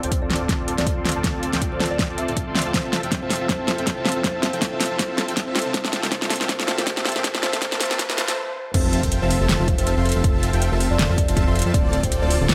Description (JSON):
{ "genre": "future bass", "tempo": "160 BPM", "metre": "4/4", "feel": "swing 56% on 16ths, half-time", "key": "F major", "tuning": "A4 = 440 Hz", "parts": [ { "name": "kalimba", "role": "melody", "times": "0.0-12.5 s", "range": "A4 to E5", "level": "-32 LUFS", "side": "equal", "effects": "sidechain pumping, low-pass filter, tape echo" }, { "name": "airy breathy pad", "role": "sustained chords", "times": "0.4-8.3 s", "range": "C3 to A4", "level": "-39 LUFS", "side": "equal", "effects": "none" }, { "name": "dense compressed supersaw", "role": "riff", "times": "0.0-12.5 s", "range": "C4 to C6", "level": "-28 LUFS", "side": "equal", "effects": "sidechain pumping, low-pass filter" }, { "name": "fat analog bass", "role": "bass", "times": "0.0-12.5 s", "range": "D1 to F2", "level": "-27 LUFS", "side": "equal", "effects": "sidechain pumping" }, { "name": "pop drum kit", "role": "drums", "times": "0.0-12.5 s", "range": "crash cymbal, hi-hat, snare drum", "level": "-26 LUFS", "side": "equal", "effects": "none" }, { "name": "electronic kick drum", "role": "drums", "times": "0.1-12.1 s", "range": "none", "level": "-27 LUFS", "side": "equal", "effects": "none" }, { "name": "riser and impact", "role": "sound effects", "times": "5.8-10.2 s", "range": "none", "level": "-37 LUFS", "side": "equal", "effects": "none" } ], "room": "light reverb", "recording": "high-pass filter", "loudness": "-22 LUFS", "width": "mono", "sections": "0.0-8.7 A section; 8.7-12.5 B section", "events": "build-up 0.0-8.7; drum fill 0.0-8.4; filter sweep on supersaw synth 0.0-8.7; filter sweep 0.0-8.7; stop 8.4-8.7; drop 8.7-12.5; impact 8.7-10.2", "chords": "0.0 Dm7; 2.7 Fmaj7; 5.6 C7sus4; 8.7 Fmaj7; 11.7 Dm7" }